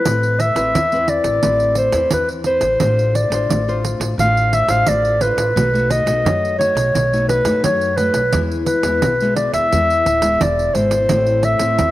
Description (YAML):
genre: samba and choro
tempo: 87 BPM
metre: 4/4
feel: straight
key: A harmonic minor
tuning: A4 = 440 Hz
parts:
  - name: mellow clarinet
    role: melody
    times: 0.0-11.9 s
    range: B4 to F5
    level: -16 LUFS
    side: equal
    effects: cassette tape
  - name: nylon-string guitar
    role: accompaniment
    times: 0.1-11.9 s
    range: A2 to C5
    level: -23 LUFS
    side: left 2 dB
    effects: cassette tape
  - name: upright bass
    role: bass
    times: 0.1-11.9 s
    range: D1 to F#2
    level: -22 LUFS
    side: equal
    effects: none
  - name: pandeiro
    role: percussion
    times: 0.1-11.9 s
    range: none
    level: -23 LUFS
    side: right 4 dB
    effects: none
room: moderate lush hall reverb, RT60 3.0 s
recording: home recording on cassette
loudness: -14 LUFS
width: side -15 dB against mid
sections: 0.1-11.9 A section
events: none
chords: 0.1 Amadd9; 2.8 Dm7/A; 5.6 B7; 8.3 E; 11.1 Am